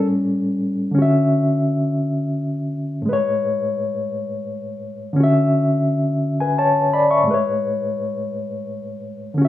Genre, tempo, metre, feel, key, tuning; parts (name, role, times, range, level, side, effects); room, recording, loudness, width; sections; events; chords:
R&B; 57 BPM (dotted quarters); 6/8; straight; D lydian; A4 = 439 Hz
mellow reed electric piano; solo; 0.0-9.5 s; A2 to C#6; -18 LUFS; left 1 dB; fast tremolo
moderate studio reverb, RT60 0.8 s; small room ambience; -17 LUFS; side -13 dB against mid
1.0-9.5 A section
0.0 A7; 1.0 Dmaj9; 3.1 Amaj9; 5.2 Dmaj9; 7.3 Amaj9